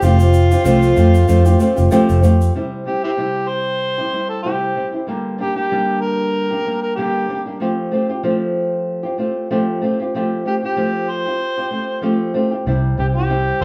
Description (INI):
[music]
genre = acoustic pop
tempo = 95 BPM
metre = 4/4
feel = swing 55% on 16ths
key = F major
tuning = A4 = 440 Hz
[part]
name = overdriven harmonica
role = melody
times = 0.0-13.6 s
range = C4 to C5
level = -22 LUFS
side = equal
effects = slapback echo, plate reverb
[part]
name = flamenco guitar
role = accompaniment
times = 0.0-13.6 s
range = G2 to G4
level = -21 LUFS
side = equal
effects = none
[part]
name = vintage muted fingered electric bass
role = bass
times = 0.0-2.5, 12.7-13.6 s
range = F1 to F2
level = -16 LUFS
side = equal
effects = none
[part]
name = egg shaker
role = percussion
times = 0.0-2.5 s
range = none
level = -41 LUFS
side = equal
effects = none
[sound]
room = wet studio reverb, RT60 0.6 s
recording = heard from further back in the room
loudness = -18 LUFS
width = mono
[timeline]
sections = 0.0-2.5 A section; 2.5-13.6 B section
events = none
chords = 0.0 Fadd9; 2.5 C; 5.1 Gm; 7.6 Fadd9; 12.7 C